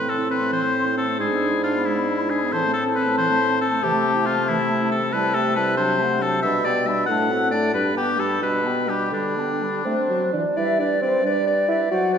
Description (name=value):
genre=quick classical-period movement for wind quintet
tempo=90 BPM (dotted quarters)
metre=6/8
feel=rubato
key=A minor, G major from 5.1 s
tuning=A4 = 440 Hz
part: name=mellow concert flute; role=melody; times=0.0-12.2 s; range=C5 to C6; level=-28 LUFS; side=left 4 dB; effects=none
part: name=clear oboe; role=second line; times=0.0-12.2 s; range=D4 to F#5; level=-23 LUFS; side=left 3 dB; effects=none
part: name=mellow clarinet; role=accompaniment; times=0.0-12.2 s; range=E3 to C5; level=-30 LUFS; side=right 5 dB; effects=none
part: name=warm French horn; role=accompaniment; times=0.0-12.2 s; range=E3 to D4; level=-27 LUFS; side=left 1 dB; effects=none
part: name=dark bassoon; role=bass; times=0.0-12.2 s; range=G2 to F#4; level=-24 LUFS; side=right 2 dB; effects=none
room=wet concert hall reverb, RT60 2.4 s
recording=recorded in a church or concert hall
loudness=-19 LUFS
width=side -7 dB against mid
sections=0.0-10.6 A section; 10.6-12.2 B section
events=none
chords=0.0 Am; 1.2 E7/G#; 2.5 Am; 3.8 Am/C; 5.1 Am7/C; 5.8 D7/C; 6.4 G/B; 7.1 D7/A; 7.7 G; 8.4 G/B; 9.1 G/D; 9.9 D; 10.6 G